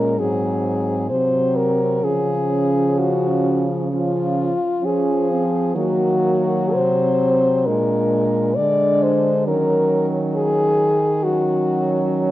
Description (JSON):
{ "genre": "classical, lyrical piece for horn quartet", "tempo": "58-69 BPM", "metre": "4/4", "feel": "rubato", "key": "Db major", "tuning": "A4 = 440 Hz", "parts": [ { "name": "warm French horn", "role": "melody", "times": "0.0-12.1 s", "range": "F4 to D5", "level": "-19 LUFS", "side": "left 2 dB", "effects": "none" }, { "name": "mellow French horn", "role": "second line", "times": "0.0-12.3 s", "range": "Bb3 to D4", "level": "-25 LUFS", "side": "right 4 dB", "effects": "none" }, { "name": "mellow French horn", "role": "accompaniment", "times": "0.0-12.3 s", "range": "F3 to Ab3", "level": "-24 LUFS", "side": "left 1 dB", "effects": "none" }, { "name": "warm French horn", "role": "bass", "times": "0.0-12.3 s", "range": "Ab2 to F3", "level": "-24 LUFS", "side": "right 2 dB", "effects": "none" } ], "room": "light reverb", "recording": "worn, warbling old tape, cassette tape, warbly pitch drift", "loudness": "-16 LUFS", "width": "side -15 dB against mid", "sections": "0.0-12.3 A section", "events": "none", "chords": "0.2 Ab7; 2.0 Db; 5.8 Ebm; 7.7 Bb7; 9.5 Ebm7", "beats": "0.19 1.11 | 2.05 3.00 3.93 4.84 | 5.76 6.75 7.67 8.58 | 9.47 10.35 11.23 12.11" }